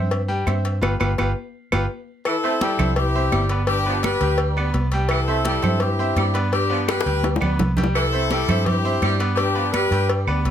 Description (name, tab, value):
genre	latin, salsa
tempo	168 BPM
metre	4/4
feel	straight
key	C major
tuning	A4 = 437 Hz
part	bright grand piano	accompaniment	0.0-10.5 s	G3 to G5	-26 LUFS	right 1 dB	none
part	vintage muted fingered electric bass	bass	0.0-10.5 s	G1 to G2	-22 LUFS	equal	none
part	congas	percussion	0.1-10.5 s	none	-27 LUFS	equal	none
part	cowbell and bongos	percussion	0.1-10.5 s	none	-28 LUFS	left 4 dB	none
part	claves	percussion	0.5-10.5 s	none	-30 LUFS	right 5 dB	none
part	brilliant horn section	melody	2.3-10.1 s	D4 to B4	-23 LUFS	left 3 dB	none
part	warm saxophone section	second line	2.3-10.4 s	E3 to A3	-28 LUFS	right 2 dB	none
room	light reverb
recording	close, detailed microphones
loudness	-18 LUFS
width	side -9 dB against mid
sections	0.0-2.3 A section; 2.3-10.5 B section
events	band accent 0.8-2.3; drum fill 6.9-8.0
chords	0.0 C; 0.8 G7; 2.3 C; 3.7 G; 5.1 C; 6.5 G; 8.0 C; 9.4 G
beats	0.11 0.47 | 0.82 1.18 1.54 1.89 | 2.25 2.61 2.97 3.32 | 3.68 4.04 4.39 4.75 | 5.11 5.46 5.82 6.17 | 6.53 6.89 7.24 7.60 | 7.96 8.31 8.67 9.03 | 9.38 9.74 10.09 10.45